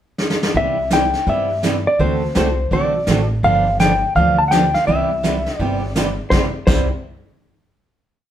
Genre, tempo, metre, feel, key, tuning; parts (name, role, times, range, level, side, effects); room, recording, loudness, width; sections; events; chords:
country, western swing; 166 BPM; 4/4; swing 63% on 8ths; C major; A4 = 440 Hz
vintage brush drum kit; drums; 0.2-6.8 s; brushed snare drum, crash cymbal, hi-hat, kick drum, snare drum; -21 LUFS; equal
picked steel-string acoustic guitar; accompaniment; 0.5-6.9 s; C3 to A4; -21 LUFS; right 3 dB
upright bass; bass; 0.5-6.9 s; G1 to G2; -22 LUFS; equal
clean lap steel guitar; melody; 0.6-6.9 s; C5 to A5; -18 LUFS; left 1 dB
moderate studio reverb, RT60 0.7 s; band playing live in one room; -15 LUFS; side -10 dB against mid
0.0-0.5 pickup bar; 0.5-6.3 A section; 6.3-7.8 final chord
drum fill 0.2-0.5
0.0 N.C.; 0.5 Cmaj7; 2.0 D7; 3.4 G7; 4.9 Cmaj7